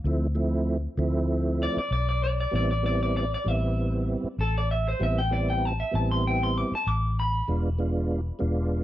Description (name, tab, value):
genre	straight-eighth soul blues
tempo	97 BPM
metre	4/4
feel	straight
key	A minor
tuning	A4 = 437 Hz
part	vintage muted fingered electric bass	bass	0.0-8.8 s	E1 to D2	-26 LUFS	equal	none
part	tonewheel organ	accompaniment	0.1-8.8 s	F3 to F4	-29 LUFS	right 2 dB	slow rotary speaker, overdrive, chorus vibrato
part	electric guitar through a small old amp	melody	1.6-8.4 s	A4 to D6	-29 LUFS	left 1 dB	slapback echo
room	digital ambience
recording	dry, close 1970s-style studio recording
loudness	-24 LUFS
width	side -13 dB against mid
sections	0.0-8.8 A section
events	none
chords	0.0 Dm7; 2.5 Am7; 7.5 E7b9